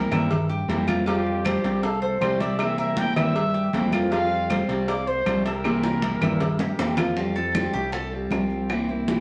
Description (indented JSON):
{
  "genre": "latin, Cuban son and guajira",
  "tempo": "157 BPM",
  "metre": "4/4",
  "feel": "straight",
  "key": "unclear",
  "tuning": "A4 = 440 Hz",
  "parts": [
    { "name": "trumpet with bucket mute", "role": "melody", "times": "0.0-6.9 s", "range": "G4 to G5", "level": "-31 LUFS", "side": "equal", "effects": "none" },
    { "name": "fingerpicked steel-string acoustic guitar", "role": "accompaniment", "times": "0.0-9.2 s", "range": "C3 to F4", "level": "-29 LUFS", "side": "equal", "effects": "none" },
    { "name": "Cuban tres", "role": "arpeggios", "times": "0.0-8.1 s", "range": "F4 to F5", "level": "-32 LUFS", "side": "equal", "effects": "none" },
    { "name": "fat analog bass", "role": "bass", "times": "0.0-9.2 s", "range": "C2 to G2", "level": "-32 LUFS", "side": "equal", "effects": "none" },
    { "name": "claves", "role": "percussion", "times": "0.1-8.9 s", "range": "none", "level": "-36 LUFS", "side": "equal", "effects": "none" },
    { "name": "congas", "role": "percussion", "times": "0.1-9.2 s", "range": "none", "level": "-31 LUFS", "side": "equal", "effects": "none" },
    { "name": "cowbell and bongos", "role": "percussion", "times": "0.1-9.2 s", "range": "none", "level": "-34 LUFS", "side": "equal", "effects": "none" }
  ],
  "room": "wet studio reverb, RT60 0.8 s",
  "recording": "none",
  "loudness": "-24 LUFS",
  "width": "mono",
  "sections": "0.0-7.2 A section; 7.2-9.2 B section",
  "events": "drum fill 5.6-7.2; Cuban tres solo 7.2-9.2",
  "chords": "0.0 C7; 1.1 Fsus2; 2.6 C7; 4.1 Fsus2; 5.6 C7; 7.2 Fadd9; 8.7 C7",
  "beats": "0.31 0.69 | 1.07 1.45 1.83 2.21 | 2.60 2.98 3.36 3.74 | 4.12 4.50 4.88 5.26 | 5.65 6.03 6.41 6.79 | 7.17 7.55 7.94 8.32 | 8.70 9.08"
}